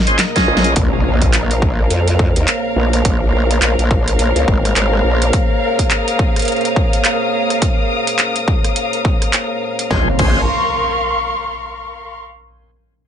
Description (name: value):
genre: glitch hop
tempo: 105 BPM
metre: 4/4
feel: swing 60% on 16ths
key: Bb minor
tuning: A4 = 440 Hz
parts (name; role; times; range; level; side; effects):
- dark analog pad; sustained chords; 0.0-10.2 s; Bb3 to F5; -22 LUFS; right 1 dB; wide subtle chorus, sidechain pumping
- muted studio string section; texture; 0.0-12.2 s; Bb4 to Eb6; -20 LUFS; left 2 dB; sidechain pumping
- overdriven tonewheel organ; stabs; 0.1-0.7, 9.9-10.4 s; Db4 to Eb5; -20 LUFS; equal; slow rotary speaker, sidechain pumping, digital delay
- dubstep drum kit; drums; 0.1-10.3 s; crash cymbal, handclaps, hi-hat, rim click, snare drum; -19 LUFS; equal; none
- electronic kick drum; drums; 0.4-10.3 s; none; -16 LUFS; equal; none
- growl bass; bass; 0.5-5.3, 9.9-10.5 s; Ab1 to F2; -16 LUFS; equal; chorus, tube saturation
- impact; sound effects; 0.8-3.0, 9.9-12.2 s; none; -24 LUFS; equal; none
room: light reverb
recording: nothing above 10.8 kHz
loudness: -13 LUFS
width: side -9 dB against mid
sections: 0.8-9.9 A section; 9.9-12.2 B section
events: drum fill 0.0-0.8; band accent 0.6; impact 0.8-3.0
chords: 0.0 Bbm9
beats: 0.19 | 0.76 1.33 1.91 2.48 | 3.05 3.62 4.19 4.76 | 5.33 5.91 6.48 7.05 | 7.62 8.19 8.76 9.33 | 9.91 10.48 11.05 11.62